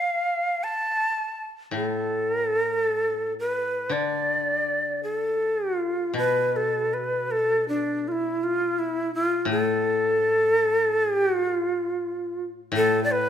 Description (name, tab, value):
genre	japanese traditional, Japanese chamber music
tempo	55 BPM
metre	4/4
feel	rubato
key	unclear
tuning	A4 = 440 Hz
part	breathy bright shakuhachi	melody	0.0-13.3 s	D4 to A5	-23 LUFS	equal	none
part	koto	accompaniment	1.7-13.3 s	A2 to D3	-31 LUFS	left 3 dB	none
room	moderate recital hall reverb, RT60 1.7 s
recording	minimal, uncompressed stereo recording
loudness	-22 LUFS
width	side -9 dB against mid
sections	0.0-6.2 A section; 6.2-13.3 B section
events	none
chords	none